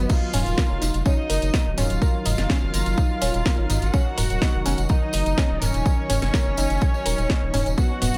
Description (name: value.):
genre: melodic techno.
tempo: 125 BPM.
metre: 4/4.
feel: straight.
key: Eb minor.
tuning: A4 = 440 Hz.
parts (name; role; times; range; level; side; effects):
unison lead; melody; 0.0-8.2 s; B3 to Gb4; -33 LUFS; equal; lush chorus, sidechain pumping, analog delay.
warm studio violin section; second line; 0.0-8.2 s; Db5 to Gb5; -34 LUFS; equal; sidechain pumping, dub echo.
lush unison pad; sustained chords; 0.0-8.2 s; Eb3 to Bb4; -35 LUFS; equal; chorus, sidechain pumping.
round analog bass; bass; 0.0-8.2 s; Eb1 to Ab1; -27 LUFS; equal; sidechain pumping.
woody wave-folded pluck; arpeggios; 0.1-8.1 s; B3 to Bb5; -34 LUFS; equal; chorus, sidechain pumping, analog delay.
electronic kick drum; drums; 0.1-7.9 s; none; -23 LUFS; equal; none.
house drum kit; drums; 0.1-8.2 s; crash cymbal, hi-hat, snare drum, toms; -30 LUFS; equal; sidechain pumping on hats, sidechain pumping on toms, sidechain pumping on cymbals, dub echo.
tambourine; percussion; 0.1-8.2 s; none; -37 LUFS; equal; none.
room: light reverb, digital ambience.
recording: echo-heavy mix.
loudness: -22 LUFS.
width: mono.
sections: 0.0-8.2 A section.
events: none.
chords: 0.1 Ebmadd9.